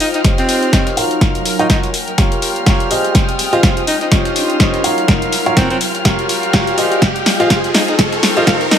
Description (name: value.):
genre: piano house.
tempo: 124 BPM.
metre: 4/4.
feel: swing 57% on 16ths.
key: unclear.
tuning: A4 = 440 Hz.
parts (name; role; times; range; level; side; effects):
raspy alto saxophone; melody; 0.0-8.8 s; C4 to F4; -20 LUFS; equal; ping-pong delay.
dark studio violin section; sustained chords; 0.0-8.8 s; Ab3 to F6; -23 LUFS; left 1 dB; vintage 12-bit sampler grit, sidechain pumping.
dusty soul sampler-style drum kit; drums; 0.0-8.8 s; hi-hat, snare drum; -27 LUFS; right 2 dB; none.
punchy analog drum machine; drums; 0.0-8.8 s; hi-hat, snare drum; -17 LUFS; left 1 dB; none.
riser; sound effects; 1.4-8.8 s; none; -24 LUFS; equal; none.
airy breathy pad; texture; 0.0-8.8 s; Gb3 to Ab5; -25 LUFS; left 1 dB; chorus, sidechain pumping.
clear upright piano; riff; 0.2-8.6 s; F4 to Gb5; -19 LUFS; equal; sidechain pumping, low-pass filter, ping-pong delay.
electronic kick drum; drums; 0.2-8.6 s; none; -15 LUFS; equal; none.
room: light reverb, digital ambience.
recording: high-pass filter.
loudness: -12 LUFS.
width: side -8 dB against mid.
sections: 0.0-8.8 A section.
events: build-up 0.0-8.8; drum fill 0.0-8.8; filter sweep on upright piano 0.0-8.8; riser 1.4-8.8.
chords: 0.2 Eb13; 1.0 Gbmaj7; 1.9 Gm7b5; 3.1 Fm9; 4.1 Eb13; 4.8 Gbmaj7; 5.8 Gm7b5; 7.0 Fm9; 8.0 Eb13.